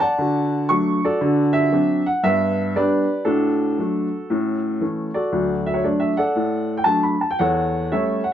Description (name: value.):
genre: jazz, stride piano.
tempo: 117 BPM.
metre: 4/4.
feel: swing 66% on 8ths.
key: D major.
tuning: A4 = 437 Hz.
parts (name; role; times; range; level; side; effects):
clear upright piano; solo; 0.0-8.3 s; D2 to C#6; -18 LUFS; equal; none.
room: moderate studio reverb, RT60 0.5 s.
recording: nothing above 7.8 kHz.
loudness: -18 LUFS.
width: side -10 dB against mid.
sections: 0.0-5.3 A section; 5.3-8.3 A section.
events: none.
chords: 0.2 D; 1.2 D7; 2.2 G; 3.3 D/A; 4.3 A; 5.3 D; 7.4 A7/E.